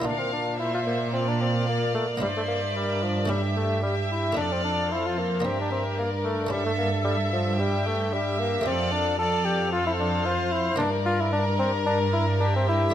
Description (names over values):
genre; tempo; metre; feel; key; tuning
classical, baroque-style concerto movement with solo episodes; 112 BPM; 4/4; straight; unclear; A4 = 445 Hz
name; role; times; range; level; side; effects
dark chamber violin section; melody; 0.0-12.9 s; D5 to G5; -36 LUFS; left 4 dB; none
warm bassoon; melody; 0.0-12.9 s; F3 to A4; -27 LUFS; left 2 dB; none
rich chamber violin section; second line; 0.0-12.9 s; Bb4 to F5; -30 LUFS; left 1 dB; none
buff-stop harpsichord; accompaniment; 0.0-12.9 s; F2 to F4; -34 LUFS; right 2 dB; none
rich chamber viola section; accompaniment; 0.0-12.9 s; G4 to C5; -33 LUFS; right 1 dB; none
warm chamber cello section; bass; 0.1-12.9 s; F2 to Bb2; -27 LUFS; right 2 dB; none
room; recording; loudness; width
light reverb; close, detailed microphones; -23 LUFS; side -10 dB against mid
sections
0.1-12.9 A section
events
none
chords
0.1 Bb; 2.2 Em7b5/G; 3.3 A7/G; 4.4 Dm/F; 5.4 Gm; 6.5 A7/G; 8.7 Dm/F; 10.8 Gm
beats
| 0.05 0.60 1.14 1.68 | 2.22 2.76 3.30 3.83 | 4.37 4.91 5.45 5.98 | 6.52 7.05 7.59 8.12 | 8.66 9.20 9.73 10.26 | 10.80 11.33 11.87 12.41